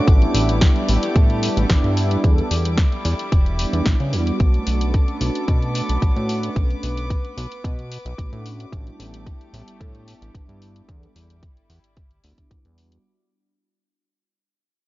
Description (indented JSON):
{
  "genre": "nu-disco, nu disco",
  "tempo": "111 BPM",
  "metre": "4/4",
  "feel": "straight",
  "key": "unclear",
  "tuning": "A4 = 440 Hz",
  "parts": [
    { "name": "warm analog pad", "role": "accompaniment", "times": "0.0-13.0 s", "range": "G3 to B4", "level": "-25 LUFS", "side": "right 1 dB", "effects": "chorus, sidechain pumping, tape echo" },
    { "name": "warm studio violin section", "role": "sustained chords", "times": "0.0-13.0 s", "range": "G3 to D6", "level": "-32 LUFS", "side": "equal", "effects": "sidechain pumping" },
    { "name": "fat analog bass", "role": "bass", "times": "0.1-13.0 s", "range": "E1 to C#3", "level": "-22 LUFS", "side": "equal", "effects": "sidechain pumping" },
    { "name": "electronic kick drum", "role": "drums", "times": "0.1-12.6 s", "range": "none", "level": "-17 LUFS", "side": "equal", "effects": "none" },
    { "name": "house drum kit", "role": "drums", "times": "0.1-13.0 s", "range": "hi-hat, snare drum", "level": "-27 LUFS", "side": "left 1 dB", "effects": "none" }
  ],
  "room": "little or no reverb",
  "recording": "dark, warm production, nothing above 7.4 kHz",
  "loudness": "-17 LUFS",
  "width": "side -17 dB against mid",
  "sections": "0.0-13.0 A section",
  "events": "fade-out 0.0-13.0; filter sweep on analog synth pad 0.0-13.0",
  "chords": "0.1 A7sus4; 2.2 Em7; 4.4 Bm7; 8.7 A7sus4; 10.9 Em7"
}